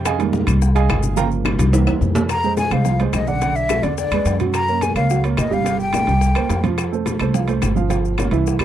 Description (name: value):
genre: Afro-Cuban jazz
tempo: 214 BPM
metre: 4/4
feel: straight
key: unclear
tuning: A4 = 440 Hz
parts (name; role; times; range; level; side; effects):
- dark baby grand piano; accompaniment; 0.0-8.6 s; Db3 to Bb5; -22 LUFS; right 8 dB; none
- upright bass; bass; 0.0-8.6 s; G1 to F#2; -20 LUFS; left 1 dB; none
- bongos; percussion; 0.1-8.6 s; none; -30 LUFS; left 11 dB; none
- claves; percussion; 0.1-8.6 s; none; -28 LUFS; left 27 dB; none
- congas; percussion; 0.1-8.6 s; none; -27 LUFS; left 2 dB; none
- maracas; percussion; 0.1-8.6 s; none; -36 LUFS; left 25 dB; none
- timbales; percussion; 0.1-8.6 s; none; -28 LUFS; right 3 dB; none
- breathy hollow jazz flute; melody; 2.3-6.6 s; D5 to Bb5; -21 LUFS; left 3 dB; none
room: little or no reverb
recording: dry, close 1970s-style studio recording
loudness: -16 LUFS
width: side -11 dB against mid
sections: 0.0-2.3 A section; 2.3-8.6 B section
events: grand piano solo 0.0-2.3; drum fill 1.2-2.3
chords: 0.1 Fm11; 1.2 Gm7b5; 1.7 C7; 2.3 Fmadd11; 3.4 Bm7; 4.0 E9; 4.5 Gbmaj7; 5.7 Gmadd11; 6.2 C7; 6.8 Fadd9; 7.9 Gm7b5